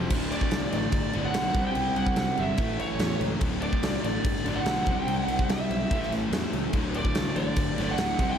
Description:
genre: hard rock.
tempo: 145 BPM.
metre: 4/4.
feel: straight.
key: D mixolydian.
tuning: A4 = 441 Hz.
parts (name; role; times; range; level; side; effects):
crunchy overdriven guitar; riff; 0.0-8.4 s; D2 to C4; -33 LUFS; right 8 dB; none.
overdriven electric guitar; riff; 0.0-8.4 s; D2 to C4; -32 LUFS; left 8 dB; slapback echo.
fuzz picked electric bass; bass; 0.0-8.3 s; D1 to E2; -33 LUFS; equal; overdrive.
huge arena drum kit; drums; 0.1-8.3 s; crash cymbal, kick drum, snare drum; -29 LUFS; equal; none.
lead guitar through a small cranked amp; melody; 0.3-8.4 s; C#5 to G5; -31 LUFS; right 2 dB; overdrive, slapback echo.
room: moderate lush hall reverb, RT60 1.6 s, studio ambience.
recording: big arena sound.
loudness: -24 LUFS.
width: side -8 dB against mid.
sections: 0.1-8.4 A section.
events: none.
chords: 0.1 D5; 1.6 C5; 2.6 A; 3.4 D5; 4.9 C; 5.9 A; 6.7 D5.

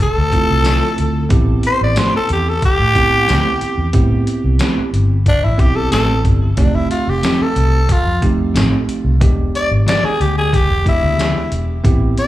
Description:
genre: straight-eighth soul blues.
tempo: 91 BPM.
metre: 4/4.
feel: straight.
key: A minor.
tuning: A4 = 442 Hz.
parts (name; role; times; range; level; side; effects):
growling tenor saxophone; melody; 0.0-12.3 s; D4 to D5; -18 LUFS; left 1 dB; slapback echo.
vintage muted fingered electric bass; bass; 0.0-12.2 s; E1 to A2; -16 LUFS; equal; none.
trip hop sampler-style drum kit; drums; 0.0-12.3 s; hi-hat, kick drum, snare drum, tambourine; -17 LUFS; equal; none.
bell-like tine electric piano; accompaniment; 0.3-12.3 s; G#3 to G4; -22 LUFS; right 4 dB; slapback echo.
electric guitar at the edge of break-up; stabs; 0.6-11.4 s; D3 to B4; -24 LUFS; left 3 dB; slapback echo.
room: digital ambience.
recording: live gig heard through the venue's PA, club reverb.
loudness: -12 LUFS.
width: side -15 dB against mid.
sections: 0.0-12.3 A section.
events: tenor saxophone solo 0.0-12.3.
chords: 0.0 Dm9; 1.3 Am9; 6.6 F7; 9.2 E7#9.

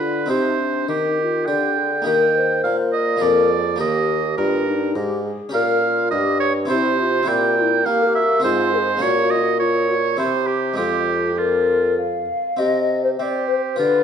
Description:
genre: classical, baroque-style sonata movement with continuo.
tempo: 103 BPM.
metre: 3/4.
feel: straight.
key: F minor from 5.5 s.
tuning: A4 = 439 Hz.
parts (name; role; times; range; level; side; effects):
mellow hollow wooden flute; melody; 0.0-14.0 s; D4 to F5; -22 LUFS; left 5 dB; none.
clear oboe; second line; 0.0-14.0 s; F4 to G5; -21 LUFS; right 6 dB; none.
harpsichord; accompaniment; 0.0-14.0 s; Eb2 to Bb4; -26 LUFS; left 2 dB; none.
mellow bassoon; bass; 0.0-14.0 s; Eb2 to C4; -23 LUFS; right 1 dB; none.
room: wet recital hall reverb, RT60 1.4 s.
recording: dark, warm production.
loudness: -17 LUFS.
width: side -8 dB against mid.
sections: 0.0-12.6 A section; 12.6-14.0 A section.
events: none.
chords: 0.3 Cm; 2.1 Eb; 3.2 Bb7/F; 3.8 Eb; 5.5 Gm7b5/Bb; 6.7 C; 7.3 C7/Bb; 8.4 Fm/Ab; 9.0 Gb/Bb; 10.2 C; 10.8 Fm; 12.6 C5.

